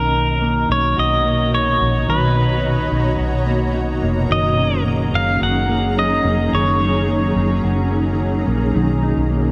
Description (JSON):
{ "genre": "dream pop", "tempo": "108 BPM", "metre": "4/4", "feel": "straight", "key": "unclear", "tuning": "A4 = 440 Hz", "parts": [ { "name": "pedal steel guitar", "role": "melody", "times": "0.0-7.6 s", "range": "A#4 to F#5", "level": "-23 LUFS", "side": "equal", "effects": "delay" }, { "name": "granular cloud pad", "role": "sustained chords", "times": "0.0-9.5 s", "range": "B2 to A#5", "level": "-24 LUFS", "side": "equal", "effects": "built-in reverb" }, { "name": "mellow electric guitar", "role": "arpeggios", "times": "0.0-9.5 s", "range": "D#3 to F#4", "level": "-24 LUFS", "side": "equal", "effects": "analog chorus, delay" }, { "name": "vintage muted fingered electric bass", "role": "bass", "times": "0.0-9.5 s", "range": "E#1 to B1", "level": "-23 LUFS", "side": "equal", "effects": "none" } ], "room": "moderate lush hall reverb, RT60 2.8 s", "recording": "none", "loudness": "-18 LUFS", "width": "mono", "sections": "0.0-8.8 A section", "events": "none", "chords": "0.0 Bmaj7; 4.3 F#6; 8.8 Bmaj7" }